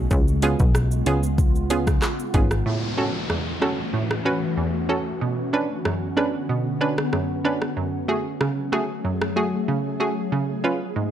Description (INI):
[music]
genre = dancehall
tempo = 94 BPM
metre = 4/4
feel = straight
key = unclear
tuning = A4 = 441 Hz
[part]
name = ethereal airy pad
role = sustained chords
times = 0.0-11.1 s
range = C#3 to G#4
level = -28 LUFS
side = left 1 dB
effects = ensemble chorus, built-in reverb, sidechain pumping
[part]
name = plucky analog bass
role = bass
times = 0.0-2.6 s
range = G#1 to C#2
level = -22 LUFS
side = equal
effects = none
[part]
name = afro-pop drum kit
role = drums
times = 0.1-9.4 s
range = handclaps, hi-hat, kick drum, rim click, shaker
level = -23 LUFS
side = equal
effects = none
[part]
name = hollow square pluck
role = accompaniment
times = 0.4-11.1 s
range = E2 to B4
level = -24 LUFS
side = right 2 dB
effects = chorus, sidechain pumping
[part]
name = downlifter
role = sound effects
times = 2.7-7.8 s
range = none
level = -34 LUFS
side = left 2 dB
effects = none
[sound]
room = light reverb, digital ambience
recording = dark, warm production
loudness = -21 LUFS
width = side -10 dB against mid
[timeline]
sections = 0.0-2.7 A section; 2.7-11.1 B section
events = none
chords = 0.1 C#7; 2.7 A6; 5.2 Bmadd9; 7.8 F#madd9; 10.3 C#7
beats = | 0.11 0.75 1.39 2.02 | 2.66 3.30 3.94 4.58 | 5.21 5.85 6.49 7.13 | 7.77 8.41 9.04 9.68 | 10.32 10.96